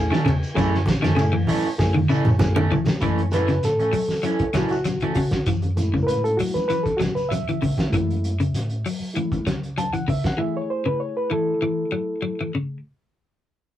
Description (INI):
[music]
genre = afrobeat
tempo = 98 BPM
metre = 4/4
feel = straight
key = F# minor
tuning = A4 = 440 Hz
[part]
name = reed electric piano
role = accompaniment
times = 0.0-12.8 s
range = G#3 to A5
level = -25 LUFS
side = equal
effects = none
[part]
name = fingered electric bass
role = bass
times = 0.0-10.2 s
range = C#2 to F#3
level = -26 LUFS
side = equal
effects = none
[part]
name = electric guitar at the edge of break-up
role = arpeggios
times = 0.1-12.8 s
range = C#3 to F#3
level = -25 LUFS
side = left 2 dB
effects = none
[part]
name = electric guitar at the edge of break-up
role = stabs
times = 0.1-5.2 s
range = E3 to C#4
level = -25 LUFS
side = right 3 dB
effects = none
[part]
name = cloth-damped thuddy drum kit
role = drums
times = 0.1-10.4 s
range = hi-hat, kick drum, ride cymbal, snare drum, toms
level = -26 LUFS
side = equal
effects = none
[part]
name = congas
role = percussion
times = 0.1-7.9 s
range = none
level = -28 LUFS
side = right 1 dB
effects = none
[part]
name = shekere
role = percussion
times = 0.3-7.9 s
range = none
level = -36 LUFS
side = right 1 dB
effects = none
[sound]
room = wet booth ambience, RT60 0.2 s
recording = rough rehearsal-room recording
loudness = -20 LUFS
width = side -12 dB against mid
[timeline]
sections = 0.0-3.0 A section; 3.0-12.8 B section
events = drum fill 1.8-3.0; reed electric piano solo 3.0-12.8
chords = 0.0 F#m7